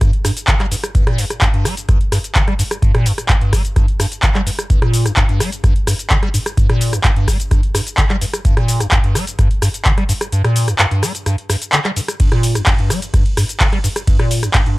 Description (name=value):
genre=acid house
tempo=128 BPM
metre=4/4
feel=straight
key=G minor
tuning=A4 = 438 Hz
part: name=liquid acid bass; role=riff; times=0.0-14.8 s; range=G2 to G3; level=-18 LUFS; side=equal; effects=phaser, overdrive, wide subtle chorus
part: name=booming analog drum machine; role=drums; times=0.0-14.8 s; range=cabasa, handclaps, hi-hat, ride cymbal, rim click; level=-19 LUFS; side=equal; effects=none
part: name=electronic kick drum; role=drums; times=0.0-14.6 s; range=none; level=-15 LUFS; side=equal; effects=none
room=little or no reverb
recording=dry, gritty hardware recording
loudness=-13 LUFS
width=side -20 dB against mid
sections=0.0-14.8 A section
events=kick drops out 10.3-12.2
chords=none